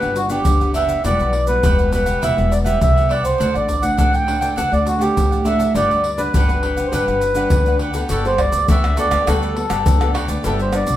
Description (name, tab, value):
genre	samba and choro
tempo	102 BPM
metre	4/4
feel	straight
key	G major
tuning	A4 = 439 Hz
part	mellow accordion	melody	0.0-11.0 s	F#4 to G5	-19 LUFS	right 1 dB	none
part	cavaquinho	accompaniment	0.0-10.8 s	D4 to F#5	-28 LUFS	right 3 dB	none
part	nylon-string guitar	accompaniment	0.0-11.0 s	A2 to B4	-24 LUFS	left 2 dB	none
part	upright bass	bass	0.0-11.0 s	E1 to D2	-23 LUFS	left 1 dB	none
part	egg shaker, pandeiro, surdo and tamborim	percussion	0.0-11.0 s	none	-20 LUFS	equal	none
room	wet studio reverb, RT60 0.8 s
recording	band playing live in one room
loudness	-15 LUFS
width	side -13 dB against mid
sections	0.0-8.1 A section; 8.1-11.0 B section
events	none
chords	0.0 Gmaj7; 1.0 Emadd9; 3.4 D; 5.8 Gmaj9; 10.5 Em9/G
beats	0.46 | 1.05 1.64 2.22 2.81 | 3.40 3.99 4.58 5.17 | 5.75 6.34 6.93 7.52 | 8.11 8.69 9.28 9.87 | 10.46